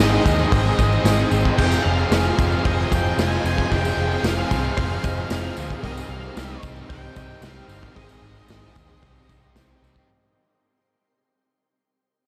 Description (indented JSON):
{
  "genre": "rock, shoegaze and dream pop",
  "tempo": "113 BPM",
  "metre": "4/4",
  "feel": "straight",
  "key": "C minor",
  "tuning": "A4 = 440 Hz",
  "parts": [
    { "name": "octave-fuzz lead guitar", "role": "melody", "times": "0.0-9.5 s", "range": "Eb5 to Ab5", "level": "-32 LUFS", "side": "equal", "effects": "distortion, diffuse ambient delay" },
    { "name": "shimmering ambient pad", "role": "sustained chords", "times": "0.0-10.1 s", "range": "Ab4 to C6", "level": "-36 LUFS", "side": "equal", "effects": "none" },
    { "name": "direct-recorded clean electric guitar", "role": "arpeggios", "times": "0.0-10.1 s", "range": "Ab4 to Eb5", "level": "-35 LUFS", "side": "equal", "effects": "analog chorus, diffuse ambient delay" },
    { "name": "overdriven electric guitar", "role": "riff", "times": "0.0-10.1 s", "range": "Ab2 to Ab4", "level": "-32 LUFS", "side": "equal", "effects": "none" },
    { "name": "raw garage guitar", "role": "riff", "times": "0.0-10.1 s", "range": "Ab2 to Ab4", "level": "-30 LUFS", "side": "equal", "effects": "overdrive, reverse reverb" },
    { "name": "tight distorted guitar", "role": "riff", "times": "0.0-10.1 s", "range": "F2 to C4", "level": "-33 LUFS", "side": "equal", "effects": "distortion" },
    { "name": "vintage muted picked electric bass", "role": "bass", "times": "0.0-10.0 s", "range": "F1 to Eb2", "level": "-26 LUFS", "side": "equal", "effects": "none" },
    { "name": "raw garage drum kit", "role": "drums", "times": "0.0-10.1 s", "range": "crash cymbal, hi-hat, kick drum, snare drum", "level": "-26 LUFS", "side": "equal", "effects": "none" },
    { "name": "tambourine", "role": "percussion", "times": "0.3-10.0 s", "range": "none", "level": "-44 LUFS", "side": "equal", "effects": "none" }
  ],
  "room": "moderate huge ambient reverb, RT60 8.2 s",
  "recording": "dreamy mix soaked in reverb, faint mains hum",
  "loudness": "-21 LUFS",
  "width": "mono",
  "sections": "0.0-10.1 A section",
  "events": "fade-out 0.0-10.1",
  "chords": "0.0 Abmaj7; 1.6 Fm7; 5.8 Cm7; 8.0 Abmaj7; 9.0 Cm7"
}